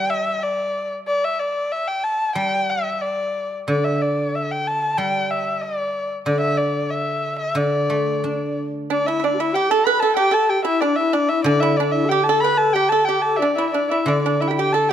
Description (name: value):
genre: chinese traditional, Chinese chamber ensemble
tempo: 93 BPM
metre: 2/4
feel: rubato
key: D zhi mode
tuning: A4 = 435 Hz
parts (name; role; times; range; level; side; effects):
- dark erhu; melody; 0.0-14.9 s; D5 to B5; -21 LUFS; left 1 dB; none
- guzheng; accompaniment; 0.0-14.9 s; D3 to D4; -24 LUFS; equal; none
- mellow xiao; second line; 8.9-14.9 s; D4 to B4; -22 LUFS; left 3 dB; none
- pipa; second line; 8.9-14.9 s; D4 to B4; -22 LUFS; right 9 dB; none
room: light reverb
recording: close, detailed microphones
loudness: -18 LUFS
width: side -9 dB against mid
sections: 0.0-8.9 A section; 8.9-14.9 B section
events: none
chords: none